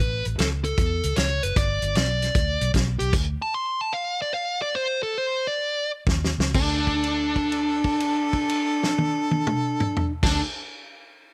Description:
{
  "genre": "electric blues shuffle",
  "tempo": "122-153 BPM",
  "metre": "4/4",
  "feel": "swing 66% on 8ths",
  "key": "unclear",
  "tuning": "A4 = 441 Hz",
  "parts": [
    { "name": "dark smooth lead guitar", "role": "melody", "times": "0.0-10.4 s", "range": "D4 to C6", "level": "-27 LUFS", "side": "equal", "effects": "overdrive" },
    { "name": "vintage muted fingered electric bass", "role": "bass", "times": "0.0-3.4, 6.1-10.4 s", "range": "F#1 to E2", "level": "-29 LUFS", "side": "equal", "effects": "none" },
    { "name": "warm soul drum kit", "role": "drums", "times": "0.2-3.3, 6.1-10.3 s", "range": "crash cymbal, hi-hat, kick drum, snare drum, toms", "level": "-28 LUFS", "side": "equal", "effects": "none" },
    { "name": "clear harmonica", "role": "second line", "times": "6.6-10.4 s", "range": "A4", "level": "-32 LUFS", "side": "equal", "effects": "overdrive" }
  ],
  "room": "light reverb",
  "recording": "none",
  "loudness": "-24 LUFS",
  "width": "mono",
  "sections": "0.0-6.5 A section; 6.5-10.5 B section",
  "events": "slowing down 3.1-6.5; stop 3.1-6.1; drum fill 6.1-6.5; held note 6.5-10.2",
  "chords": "0.0 A; 1.6 G; 3.1 D7(no3); 6.1 C#sus2; 6.5 D5"
}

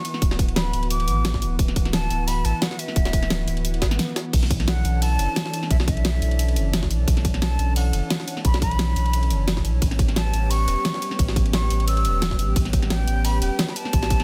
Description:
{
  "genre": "liquid drum and bass",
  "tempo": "175 BPM",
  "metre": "4/4",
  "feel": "swing 54% on 16ths",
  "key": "unclear",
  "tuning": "A4 = 435 Hz",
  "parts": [
    { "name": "breathy mellow silver concert flute", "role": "melody", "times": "0.0-14.2 s", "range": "E5 to E6", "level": "-32 LUFS", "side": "equal", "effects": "delay" },
    { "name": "lush unison pad", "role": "sustained chords", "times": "0.0-14.2 s", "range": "E3 to A4", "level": "-34 LUFS", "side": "equal", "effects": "chorus, sidechain pumping" },
    { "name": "pop drum kit", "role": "drums", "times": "0.0-14.2 s", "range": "crash cymbal, hi-hat, ride cymbal, snare drum", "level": "-30 LUFS", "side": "equal", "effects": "none" },
    { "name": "jungle sampler-style drum kit", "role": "drums", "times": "0.1-14.2 s", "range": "hi-hat, ride cymbal, snare drum", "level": "-35 LUFS", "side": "equal", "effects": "high-pass filter on cymbals, high-pass filter on snare, high-pass filter on hats" },
    { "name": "warm sub bass", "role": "bass", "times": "0.2-14.2 s", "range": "D1 to B1", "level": "-25 LUFS", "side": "equal", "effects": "none" },
    { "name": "electronic kick drum", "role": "drums", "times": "0.2-14.2 s", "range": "none", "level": "-24 LUFS", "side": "equal", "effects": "none" },
    { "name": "swell", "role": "sound effects", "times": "3.8-4.3 s", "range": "none", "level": "-40 LUFS", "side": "equal", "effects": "none" }
  ],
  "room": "digital ambience",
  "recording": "dense, heavily limited modern master",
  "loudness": "-22 LUFS",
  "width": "mono",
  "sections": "0.0-14.2 A section",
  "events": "swell 3.8-4.3; break 4.0-4.3",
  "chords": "0.0 D69; 4.3 Bm11; 9.8 A9"
}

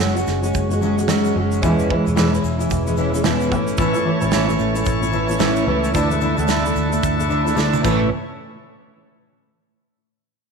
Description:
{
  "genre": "acoustic pop",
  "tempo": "111 BPM",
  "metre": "4/4",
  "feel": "swing 60% on 16ths",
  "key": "A major",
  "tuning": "A4 = 440 Hz",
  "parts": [
    { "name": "fingerpicked steel-string acoustic guitar", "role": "accompaniment", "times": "0.0-8.1 s", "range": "E2 to F#4", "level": "-18 LUFS", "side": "equal", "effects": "double-tracked left and right" },
    { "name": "vintage muted fingered electric bass", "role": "bass", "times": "0.0-8.1 s", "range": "E1 to D2", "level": "-24 LUFS", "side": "equal", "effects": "none" },
    { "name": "egg shaker", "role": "percussion", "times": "0.0-8.1 s", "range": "none", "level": "-38 LUFS", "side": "left 17 dB", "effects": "none" },
    { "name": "modern studio drum kit", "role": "drums", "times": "0.2-8.0 s", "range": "crash cymbal, kick drum, shaker, snare drum, toms", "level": "-25 LUFS", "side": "right 5 dB", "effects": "none" },
    { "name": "bright tonewheel organ", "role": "sustained chords", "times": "3.8-8.1 s", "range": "A3 to C#6", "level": "-25 LUFS", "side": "equal", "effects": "overdrive, slow rotary speaker" }
  ],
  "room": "moderate echo chamber reverb, RT60 1.9 s, studio ambience",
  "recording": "1960s-style stereo",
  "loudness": "-16 LUFS",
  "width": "side -5 dB against mid",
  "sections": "0.0-8.1 A section; 8.1-10.3 B section",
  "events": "drum fill 7.6-8.1",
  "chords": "0.0 F#sus2; 1.6 E6; 3.5 A; 6.0 Dsus2; 7.8 A; 8.1 N.C."
}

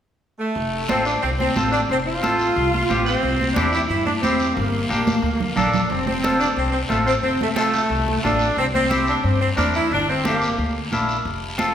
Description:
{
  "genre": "latin, cumbia",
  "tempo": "180 BPM",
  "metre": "4/4",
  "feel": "straight",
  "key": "F major",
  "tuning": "A4 = 441 Hz",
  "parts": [
    { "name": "warm saxophone section", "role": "melody", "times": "0.4-10.7 s", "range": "A3 to F4", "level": "-21 LUFS", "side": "equal", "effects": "none" },
    { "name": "upright bass", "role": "bass", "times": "0.6-11.7 s", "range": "F1 to G2", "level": "-26 LUFS", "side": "equal", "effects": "none" },
    { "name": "congas", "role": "percussion", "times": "0.6-11.7 s", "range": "none", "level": "-27 LUFS", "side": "right 1 dB", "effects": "none" },
    { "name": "guiro", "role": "percussion", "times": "0.6-11.7 s", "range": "none", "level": "-32 LUFS", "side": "left 3 dB", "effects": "none" },
    { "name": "clean electric guitar", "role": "accompaniment", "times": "0.9-11.7 s", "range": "Bb3 to Bb4", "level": "-24 LUFS", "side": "equal", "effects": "none" }
  ],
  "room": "wet scoring stage reverb, RT60 1.8 s",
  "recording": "recorded in a church or concert hall",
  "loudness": "-18 LUFS",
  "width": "side -9 dB against mid",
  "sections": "0.6-5.9 A section; 5.9-11.7 B section",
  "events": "drum fill 4.9-5.9",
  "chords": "0.0 N.C.; 0.6 F; 3.2 C; 4.6 Gm; 5.9 F; 8.6 C; 9.9 Gm"
}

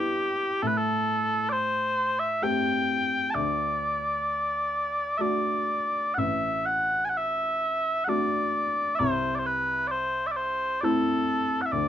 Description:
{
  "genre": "celtic folk, Celtic slow air",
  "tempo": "66 BPM",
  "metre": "3/4",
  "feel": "rubato",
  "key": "unclear",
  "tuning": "A4 = 439 Hz",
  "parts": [
    { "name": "mellow small bagpipes", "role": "melody", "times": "0.0-11.9 s", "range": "G4 to A5", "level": "-25 LUFS", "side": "equal", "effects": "none" },
    { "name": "warm upright piano", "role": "accompaniment", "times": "0.0-11.9 s", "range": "A1 to G4", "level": "-30 LUFS", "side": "left 1 dB", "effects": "none" }
  ],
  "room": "moderate studio reverb, RT60 0.6 s",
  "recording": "band playing live in one room",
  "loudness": "-24 LUFS",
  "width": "side -10 dB against mid",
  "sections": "0.0-11.9 A section",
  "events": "none",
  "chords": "0.0 G6; 0.6 Am7; 3.4 D; 9.0 C6"
}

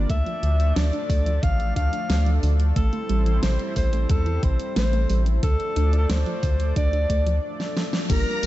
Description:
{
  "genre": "synthwave",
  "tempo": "90 BPM",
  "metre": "4/4",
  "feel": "straight",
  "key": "D minor",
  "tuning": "A4 = 441 Hz",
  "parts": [
    { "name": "chorused pulse-width pad", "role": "sustained chords", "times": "0.0-8.5 s", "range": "F3 to Bb5", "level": "-33 LUFS", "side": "right 1 dB", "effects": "sidechain pumping" },
    { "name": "round analog bass", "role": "bass", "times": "0.0-8.5 s", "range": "G1 to E2", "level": "-21 LUFS", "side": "equal", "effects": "sidechain pumping" },
    { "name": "breathy alto saxophone", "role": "melody", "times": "0.1-8.5 s", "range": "A4 to F5", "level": "-29 LUFS", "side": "left 2 dB", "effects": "ping-pong delay" },
    { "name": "soft round pluck", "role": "arpeggios", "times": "0.1-8.5 s", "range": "C3 to D4", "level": "-32 LUFS", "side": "right 2 dB", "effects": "chorus, vintage 12-bit sampler grit, digital delay" },
    { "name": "electronic kick drum", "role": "drums", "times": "0.1-8.2 s", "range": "none", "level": "-23 LUFS", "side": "equal", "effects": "overdrive, studio reverb" },
    { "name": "pop drum kit", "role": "drums", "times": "0.1-8.5 s", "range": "crash cymbal, hi-hat, snare drum, tambourine", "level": "-30 LUFS", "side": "equal", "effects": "studio reverb" },
    { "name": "string machine, violins", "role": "second line", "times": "8.1-8.5 s", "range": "Bb5", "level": "-29 LUFS", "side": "left 1 dB", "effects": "ensemble chorus, cassette tape" },
    { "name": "FM electric piano with soft pad layer", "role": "stabs", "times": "8.1-8.5 s", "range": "G3 to G4", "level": "-30 LUFS", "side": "left 5 dB", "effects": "chorus, tremolo" }
  ],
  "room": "little or no reverb",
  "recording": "dark, warm production, nothing above 7.9 kHz",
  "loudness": "-20 LUFS",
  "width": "side -15 dB against mid",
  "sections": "0.0-8.1 A section",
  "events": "break 7.4-8.1; drum fill 7.6-8.1; band accent 7.9-8.3",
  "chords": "0.1 Dm; 2.8 Am7; 5.4 Dm"
}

